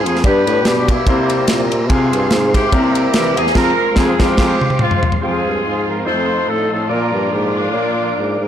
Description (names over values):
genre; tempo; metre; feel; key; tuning
uptempo gospel; 144 BPM; 4/4; swing 56% on 8ths; F harmonic minor; A4 = 440 Hz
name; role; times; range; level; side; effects
dark horn section; melody; 0.0-8.4 s; G3 to C5; -19 LUFS; equal; none
mellow tonewheel organ; sustained chords; 0.0-8.5 s; Ab3 to D6; -23 LUFS; right 1 dB; fast rotary speaker, chorus vibrato
dark baritone saxophone; bass; 0.0-8.5 s; E2 to E3; -19 LUFS; equal; transformer saturation
modern studio drum kit; drums; 0.1-5.2 s; crash cymbal, kick drum, ride cymbal, snare drum, toms; -17 LUFS; equal; none
clear baby grand piano; accompaniment; 0.2-8.4 s; G2 to D5; -21 LUFS; left 3 dB; none
rich studio string section; sustained chords; 5.2-8.5 s; F3 to F4; -28 LUFS; equal; none
room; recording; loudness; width
moderate concert hall reverb, RT60 1.8 s; blown-out, overdriven recording, overdrive; -13 LUFS; side -10 dB against mid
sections
0.0-5.2 A section; 5.2-8.5 B section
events
band accent 3.6-5.2; drum fill 4.4-5.2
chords
0.2 G; 1.1 C7; 1.9 Fm; 2.7 C7; 3.6 Fm; 6.1 F7; 6.9 Bb